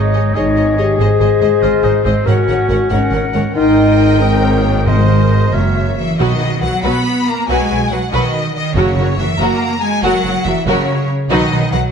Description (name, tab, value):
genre	cinematic, heroic adventure film score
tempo	94 BPM (dotted quarters)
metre	6/8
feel	straight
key	Ab major, B major from 6.2 s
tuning	A4 = 440 Hz
part	silver concert flute	second line	0.0-6.0 s	Eb5 to G5	-24 LUFS	left 3 dB	none
part	warm clarinet	second line	0.0-6.0 s	Bb4 to Db5	-24 LUFS	left 1 dB	none
part	warm oboe	second line	0.0-5.9 s	C4 to C5	-24 LUFS	right 4 dB	none
part	mellow French horn section	sustained chords	0.0-6.2 s	Ab3 to Ab4	-16 LUFS	left 5 dB	none
part	clear symphonic cello section	bass	0.0-11.9 s	Gb2 to B3	-19 LUFS	right 1 dB	none
part	rich studio double bass section	bass	0.0-11.8 s	Gb1 to B1	-18 LUFS	right 3 dB	none
part	warm symphonic violin section	melody	0.1-11.8 s	C#5 to B5	-22 LUFS	left 3 dB	none
part	rich symphonic viola section	accompaniment	0.1-11.8 s	F#3 to Bb4	-22 LUFS	equal	none
part	rich symphonic violin section	second line	0.2-11.8 s	F#4 to Eb5	-23 LUFS	equal	none
part	timpani	percussion	4.9-9.4 s	F#2 to B2	-20 LUFS	equal	none
room	wet recital hall reverb, RT60 1.5 s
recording	dark, warm production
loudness	-12 LUFS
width	side -6 dB against mid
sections	0.0-6.2 A section; 6.2-11.9 B section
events	none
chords	0.0 Dbsus2/Ab; 1.0 Ab; 2.3 Gb/Ab; 3.6 Eb/Ab; 4.9 Abadd9; 5.5 Gb7; 6.2 B; 8.8 F#; 11.3 B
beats	0.36 | 1.00 1.64 | 2.27 2.92 | 3.56 4.21 | 4.86 5.53 | 6.19 6.84 | 7.49 8.13 | 8.77 9.40 | 10.04 10.67 | 11.30